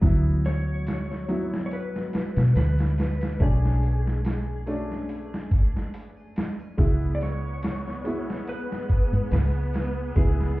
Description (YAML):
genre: trip hop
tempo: 71 BPM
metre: 4/4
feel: swing 55% on 16ths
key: C# phrygian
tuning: A4 = 440 Hz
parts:
  - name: warm upright piano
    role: accompaniment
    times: 0.0-10.6 s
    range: F#3 to E4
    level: -32 LUFS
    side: equal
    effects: harmonic tremolo
  - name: deep dub fingered electric bass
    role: bass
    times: 0.0-10.6 s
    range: B1 to B2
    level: -24 LUFS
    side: equal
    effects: none
  - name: dusty soul sampler-style drum kit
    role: drums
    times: 0.0-10.6 s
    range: hi-hat, kick drum, snare drum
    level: -26 LUFS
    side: equal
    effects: overdrive
  - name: electric slide guitar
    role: melody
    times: 0.5-10.6 s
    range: G#4 to D5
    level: -36 LUFS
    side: left 2 dB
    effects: dub echo
  - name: tambourine and triangle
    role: percussion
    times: 0.9-9.9 s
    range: none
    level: -64 LUFS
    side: right 2 dB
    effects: none
  - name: clear studio string section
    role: sustained chords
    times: 6.8-10.6 s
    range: B3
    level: -38 LUFS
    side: right 1 dB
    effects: none
  - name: bowed-like drone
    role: texture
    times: 7.6-10.6 s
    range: G#4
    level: -46 LUFS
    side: right 2 dB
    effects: built-in reverb
room: studio ambience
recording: heard muffled through a wall, club reverb, EQ, faint mains hum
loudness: -23 LUFS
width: side -19 dB against mid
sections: 0.0-10.6 A section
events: none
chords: 0.0 D6; 3.4 Bm7; 6.8 C#m7